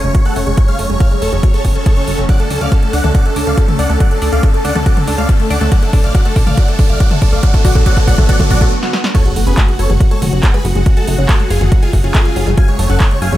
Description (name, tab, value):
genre	uplifting trance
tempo	140 BPM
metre	4/4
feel	straight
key	F# harmonic minor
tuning	A4 = 439 Hz
part	big supersaw lead	melody	0.0-13.4 s	E#4 to G#5	-20 LUFS	equal	sidechain pumping, tape echo
part	shimmering ambient pad	sustained chords	0.0-13.4 s	C#3 to G#5	-24 LUFS	right 1 dB	chorus, built-in reverb, sidechain pumping
part	tight sequenced synth	arpeggios	0.0-13.4 s	F#3 to G#4	-23 LUFS	left 3 dB	chorus, phaser, sidechain pumping, tape echo
part	plucky analog bass	bass	0.0-13.4 s	F#1 to D2	-16 LUFS	equal	sidechain pumping
part	big-room dance drum kit	drums	0.0-13.4 s	crash cymbal, handclaps, hi-hat, snare drum, toms	-22 LUFS	equal	none
part	riser, swell and impact	sound effects	0.9-10.9 s	none	-26 LUFS	right 1 dB	none
part	electronic kick drum	drums	0.1-13.1 s	none	-11 LUFS	equal	none
room	little or no reverb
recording	none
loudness	-10 LUFS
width	side -14 dB against mid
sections	0.0-9.1 A section; 9.1-13.4 B section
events	build-up 0.0-9.1; riser 0.9-8.7; drum fill 2.3-8.7, 8.8-9.1; swell 8.3-9.1; break 8.7-9.1; drop 9.1-13.4; impact 9.1-10.9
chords	0.0 F#madd9; 2.3 D; 5.7 Bm7; 9.1 F#madd9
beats	0.15 | 0.58 1.00 1.43 1.86 | 2.29 2.72 3.15 3.58 | 4.00 4.43 4.86 5.29 | 5.72 6.15 6.58 7.00 | 7.43 7.86 8.29 8.72 | 9.15 9.58 10.00 10.43 | 10.86 11.29 11.72 12.15 | 12.58 13.00